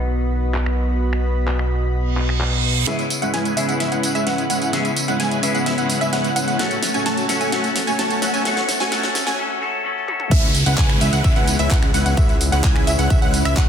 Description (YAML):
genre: EDM, festival progressive house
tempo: 129 BPM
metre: 4/4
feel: straight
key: C# minor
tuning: A4 = 440 Hz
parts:
  - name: clean electric guitar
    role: accompaniment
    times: 0.0-10.3 s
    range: C#3 to A4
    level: -26 LUFS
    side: left 3 dB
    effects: sidechain pumping, ping-pong delay
  - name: lush unison pad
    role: sustained chords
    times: 0.0-13.7 s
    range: C#3 to B5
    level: -29 LUFS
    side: equal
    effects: chorus, sidechain pumping
  - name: fat analog bass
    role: bass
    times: 0.0-2.8, 10.3-13.7 s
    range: B1 to C#2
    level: -20 LUFS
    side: equal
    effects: sidechain pumping
  - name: pop drum kit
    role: drums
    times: 0.5-13.7 s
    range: crash cymbal, finger snaps, handclaps, hi-hat, snare drum, tambourine, toms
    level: -25 LUFS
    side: right 1 dB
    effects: soft clipping on snare, high-pass filter on snare, low-pass filter on snare, high-pass filter on hats, low-pass filter on hats, high-pass filter on perc, low-pass filter on perc, high-pass filter on toms, low-pass filter on toms, high-pass filter on cymbals, low-pass filter on cymbals
  - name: reverse cymbal, riser and downlifter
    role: sound effects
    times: 2.1-13.7 s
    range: none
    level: -28 LUFS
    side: right 3 dB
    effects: none
  - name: wide unison pluck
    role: arpeggios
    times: 2.9-13.7 s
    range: E5 to A5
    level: -25 LUFS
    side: right 1 dB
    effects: sidechain pumping, ping-pong delay
  - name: dense compressed supersaw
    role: riff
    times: 2.9-13.7 s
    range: G#3 to A5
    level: -22 LUFS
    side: equal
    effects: sidechain pumping, low-pass filter, ping-pong delay
  - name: electronic kick drum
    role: drums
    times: 10.3-13.7 s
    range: none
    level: -17 LUFS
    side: equal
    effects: none
room: moderate lush hall reverb, RT60 1.8 s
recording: dense, heavily limited modern master, high-pass filter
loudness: -17 LUFS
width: side -8 dB against mid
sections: 0.0-2.9 A section; 2.9-10.3 B section; 10.3-13.7 C section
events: reverse cymbal 2.1-2.9; build-up 2.9-10.3; drum fill 2.9-9.4, 10.1; filter sweep on supersaw synth 2.9-10.3; filter sweep on synth pluck 2.9-10.3; break 9.4-10.3; drop 10.3-13.7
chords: 0.0 B; 2.9 C#m7; 6.6 F#m; 10.3 C#m7